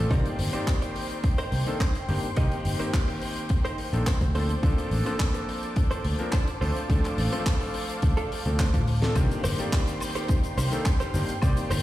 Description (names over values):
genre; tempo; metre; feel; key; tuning
nu-disco, nu disco; 106 BPM; 4/4; straight; C dorian; A4 = 440 Hz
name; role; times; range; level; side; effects
warm electric grand piano; accompaniment; 0.0-11.8 s; Eb3 to D5; -31 LUFS; left 1 dB; sidechain pumping, digital delay
lush unison pad; sustained chords; 0.0-11.8 s; C5 to D6; -36 LUFS; equal; chorus, sidechain pumping
picked electric bass; bass; 0.0-11.8 s; G1 to D2; -26 LUFS; equal; none
direct-recorded clean electric guitar; riff; 0.1-11.8 s; D4 to Eb5; -35 LUFS; right 2 dB; analog chorus, digital delay
electronic kick drum; drums; 0.1-11.5 s; none; -24 LUFS; equal; overdrive
huge arena drum kit; drums; 0.1-11.8 s; handclaps, hi-hat, shaker, snare drum, toms, woodblock; -34 LUFS; left 1 dB; none
room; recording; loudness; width
small room ambience; played on a big sound system in a bare room, stone room reverb; -23 LUFS; side -15 dB against mid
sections
0.0-9.2 A section; 9.2-11.8 B section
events
drum fill 8.6-9.2; drop 9.2-11.8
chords
0.1 Cm7; 4.3 Bbmaj9; 6.6 Dm7; 9.2 Cm7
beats
| 0.10 0.67 1.24 1.80 | 2.37 2.93 3.50 4.07 | 4.63 5.20 5.76 6.33 | 6.90 7.46 8.03 8.59 | 9.16 9.73 10.29 10.86 | 11.42